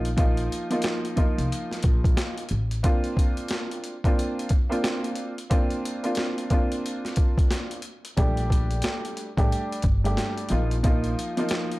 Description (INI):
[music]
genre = hip hop, boom-bap hip-hop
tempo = 90 BPM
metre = 4/4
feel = swing 62% on 16ths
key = Bb major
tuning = A4 = 440 Hz
[part]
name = warm upright piano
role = accompaniment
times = 0.0-11.8 s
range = F3 to G4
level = -28 LUFS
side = equal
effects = high-pass filter, low-pass filter
[part]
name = upright bass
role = bass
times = 0.0-2.8, 8.2-11.1 s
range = G1 to C2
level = -26 LUFS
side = equal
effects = none
[part]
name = boom bap sampler-style drum kit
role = drums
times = 0.1-11.8 s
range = hi-hat, kick drum, snare drum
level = -24 LUFS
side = equal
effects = overdrive
[sound]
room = small room ambience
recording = dark, warm production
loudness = -22 LUFS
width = side -19 dB against mid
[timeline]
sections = 0.0-11.8 A section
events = none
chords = 0.0 Ebsus2/Bb; 2.8 Bbadd9; 8.2 Dsus4/Bb; 10.5 Ebsus2/Bb